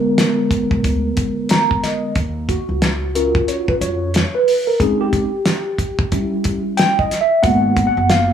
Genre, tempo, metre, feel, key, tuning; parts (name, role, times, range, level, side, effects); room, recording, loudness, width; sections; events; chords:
hip hop, jazz-hop; 91 BPM; 4/4; swing 62% on 16ths; Eb minor; A4 = 440 Hz
mellow tine electric piano; accompaniment; 0.0-8.3 s; D3 to Bb5; -17 LUFS; right 1 dB; medium stereo tremolo, plate reverb
cloth-damped thuddy drum kit; drums; 0.2-8.3 s; hi-hat, kick drum, snare drum; -19 LUFS; equal
upright bass; bass; 0.7-8.3 s; Gb1 to F2; -21 LUFS; equal
moderate studio reverb, RT60 0.6 s; -15 LUFS; side -8 dB against mid
0.0-2.2 A section; 2.2-8.3 B section
tine electric piano fill 1.2-2.2; tine electric piano solo 2.2-8.3
0.0 Bb7b9; 2.2 Ebm9; 4.8 Abmaj7; 6.1 Eb7b9/G; 7.4 Abm9